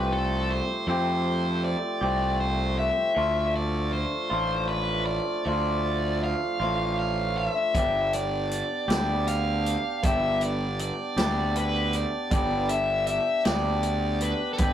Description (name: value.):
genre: indie rock.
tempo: 52 BPM (dotted quarters).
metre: 6/8.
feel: straight.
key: unclear.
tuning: A4 = 440 Hz.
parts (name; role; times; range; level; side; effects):
overdriven electric guitar; melody; 0.0-14.7 s; A4 to F5; -28 LUFS; equal; none.
electric guitar through a small old amp; riff; 0.0-14.7 s; F3 to G4; -29 LUFS; equal; none.
fuzz fingered electric bass; bass; 0.0-14.7 s; G1 to F2; -29 LUFS; equal; overdrive.
vintage drum kit; drums; 7.7-14.7 s; hi-hat, kick drum, snare drum; -28 LUFS; equal; none.
room: moderate small room reverb, RT60 0.6 s.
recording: rough rehearsal-room recording.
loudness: -24 LUFS.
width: side -10 dB against mid.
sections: 0.0-14.7 A section.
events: none.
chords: 0.0 Fadd9; 3.2 Dm; 7.7 G.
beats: | 0.86 2.01 | 3.16 4.31 | 5.45 6.60 | 7.74 8.89 | 10.03 11.17 | 12.32 13.46 | 14.60.